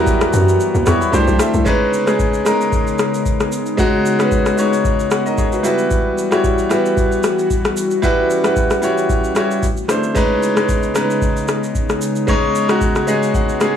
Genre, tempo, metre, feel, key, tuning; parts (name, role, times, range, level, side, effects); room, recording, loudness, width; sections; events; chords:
amapiano; 113 BPM; 4/4; swing 55% on 16ths; B major; A4 = 443 Hz
clear baby grand piano; accompaniment; 0.0-13.8 s; F#3 to C#6; -17 LUFS; equal
airy breathy pad; sustained chords; 0.0-13.8 s; C#3 to F#4; -21 LUFS; left 2 dB; chorus
hollow log drum bass; bass; 0.0-1.7 s; B1 to F#2; -16 LUFS; left 1 dB
booming analog drum machine; drums; 0.1-13.7 s; kick drum, rim click, shaker; -20 LUFS; left 1 dB
digital ambience; dry, gritty hardware recording, studio ambience; -14 LUFS; side -8 dB against mid
0.0-1.7 A section; 1.7-13.8 B section
drop 0.0-1.7; kick muted 0.6-1.7; grand piano fill 0.6-1.7, 12.8-13.8
0.0 Emadd9; 1.1 C69; 1.7 B69; 5.6 Emadd9; 9.6 C69; 10.2 B69